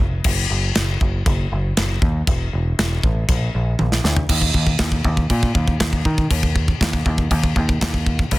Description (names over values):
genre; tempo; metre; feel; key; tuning
heavy metal; 119 BPM; 4/4; straight; unclear; A4 = 442 Hz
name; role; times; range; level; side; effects
overdriven picked electric bass; bass; 0.0-8.4 s; E1 to Eb3; -20 LUFS; equal; none
modern studio drum kit; drums; 0.2-8.4 s; china cymbal, crash cymbal, kick drum, snare drum, toms; -19 LUFS; equal; none
room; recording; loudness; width
little or no reverb; dense, heavily limited modern master; -17 LUFS; side -18 dB against mid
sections
0.0-4.3 A section; 4.3-8.4 B section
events
drum fill 3.8-4.3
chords
none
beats
| 0.24 0.75 1.25 1.76 | 2.26 2.76 3.27 3.77 | 4.28 4.78 5.29 5.79 | 6.30 6.80 7.31 7.81 | 8.32